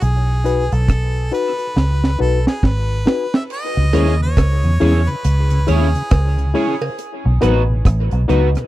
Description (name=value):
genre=dub reggae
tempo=69 BPM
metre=4/4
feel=swing 61% on 16ths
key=C# minor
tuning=A4 = 440 Hz
part: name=clear harmonica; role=melody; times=0.0-6.6 s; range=G#4 to E5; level=-26 LUFS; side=right 1 dB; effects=dub echo
part: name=vintage muted fingered electric bass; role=bass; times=0.0-8.5 s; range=G#1 to E2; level=-16 LUFS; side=equal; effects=transformer saturation
part: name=deep reggae drum kit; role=drums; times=0.0-8.7 s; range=crash cymbal, hi-hat, kick drum, rim click, snare drum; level=-16 LUFS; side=right 1 dB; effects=none
part: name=reed electric piano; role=stabs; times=0.4-8.5 s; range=D#4 to C#5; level=-23 LUFS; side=left 5 dB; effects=spring reverb, dub echo
part: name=mellow tonewheel organ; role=accompaniment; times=3.8-8.6 s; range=B2 to E4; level=-22 LUFS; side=left 1 dB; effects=chorus vibrato, slow rotary speaker
part: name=electric guitar at the edge of break-up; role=accompaniment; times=3.9-8.5 s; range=B3 to C#5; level=-25 LUFS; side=right 5 dB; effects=analog chorus, dub echo
part: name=cowbell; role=percussion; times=3.9-7.7 s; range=none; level=-29 LUFS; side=right 5 dB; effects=dub echo
room=light reverb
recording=dry, close 1970s-style studio recording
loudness=-14 LUFS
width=side -16 dB against mid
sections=0.0-3.5 A section; 3.5-8.7 B section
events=break 0.0-3.5; drum fill 1.8-3.5; part muted 7.0-8.7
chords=0.0 B; 3.5 C#m; 7.0 B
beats=| 0.02 0.89 1.76 2.63 | 3.50 4.37 5.25 6.12 | 6.99 7.86